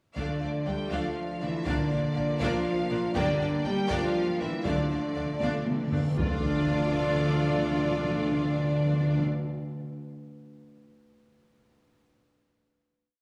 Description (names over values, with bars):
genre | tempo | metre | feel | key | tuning
cinematic, epic orchestral film score | 80 BPM (dotted quarters) | 6/8 | straight | D minor | A4 = 441 Hz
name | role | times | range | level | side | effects
rich symphonic violin section | second line | 0.1-9.2 s | D5 to G5 | -42 LUFS | equal | none
clear symphonic violin section | melody | 0.2-9.2 s | D5 to G5 | -40 LUFS | equal | none
bright symphonic viola section | accompaniment | 0.2-9.2 s | A3 to F4 | -40 LUFS | equal | none
clear trombone section | sustained chords | 0.2-9.2 s | F3 to Bb3 | -41 LUFS | equal | none
mellow French horn section | sustained chords | 0.2-9.2 s | D4 to G4 | -36 LUFS | equal | none
mellow woodwind section | sustained chords | 0.2-9.2 s | D4 to D5 | -39 LUFS | equal | none
clear symphonic double bass section | bass | 0.2-9.2 s | G1 to D2 | -38 LUFS | equal | none
rich symphonic cello section | bass | 0.2-9.2 s | D3 to D4 | -35 LUFS | equal | none
taiko ensemble | drums | 0.2-7.1 s | none | -36 LUFS | equal | none
timpani | percussion | 0.2-0.9, 4.7-9.3 s | D3 | -32 LUFS | equal | none
reverse cymbal and sub drop | sound effects | 6.0-7.7 s | none | -42 LUFS | equal | none
room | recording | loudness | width
wet scoring stage reverb, RT60 2.0 s | studio reverb | -28 LUFS | mono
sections
0.2-6.2 theme; 6.2-9.2 final chord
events
timpani fill 4.7-6.2; drum fill 5.4-6.2; reverse cymbal 6.0; impact 6.2-7.7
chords
0.2 Dm; 1.7 Bb; 3.2 Gm; 4.7 Dm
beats
| 0.17 0.92 | 1.67 2.42 | 3.16 3.91 | 4.66 5.42 | 6.18 6.93 | 7.68 8.43